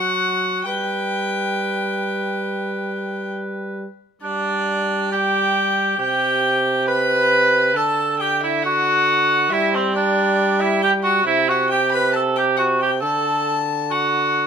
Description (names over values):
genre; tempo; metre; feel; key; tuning
classical, renaissance-style consort dance; 68 BPM; 4/4; straight; G major; A4 = 440 Hz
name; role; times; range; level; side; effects
rich violin; melody; 0.0-14.5 s; C5 to B5; -25 LUFS; left 5 dB; none
warm cor anglais; second line; 0.0-14.5 s; C4 to B4; -19 LUFS; right 2 dB; none
warm trombone; bass; 0.0-14.5 s; C3 to G3; -24 LUFS; right 1 dB; none
room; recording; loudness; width
moderate stone room reverb, RT60 1.0 s; minimal, uncompressed stereo recording; -17 LUFS; side -7 dB against mid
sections
0.0-4.2 A section; 4.2-14.5 A section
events
none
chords
0.0 N.C.; 0.6 G; 6.0 C5; 7.8 D; 9.5 Cadd9/G; 11.3 Cmaj7#11; 13.0 D5